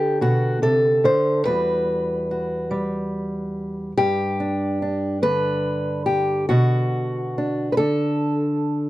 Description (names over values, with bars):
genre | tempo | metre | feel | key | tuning
folk, solo fingerstyle acoustic guitar | 48 BPM (dotted quarters) | 6/8 | straight | E minor | A4 = 440 Hz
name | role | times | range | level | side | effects
fingerpicked old ladder-braced acoustic guitar | solo | 0.0-8.9 s | E2 to C5 | -19 LUFS | equal | none
room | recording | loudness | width
small room ambience | dry, close 1970s-style studio recording | -19 LUFS | side -16 dB against mid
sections
0.0-8.9 A section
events
none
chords
0.0 D5; 1.5 Emadd9; 4.0 G; 6.5 Bm7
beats
0.21 | 1.46 2.71 | 3.97 5.23 | 6.50 7.79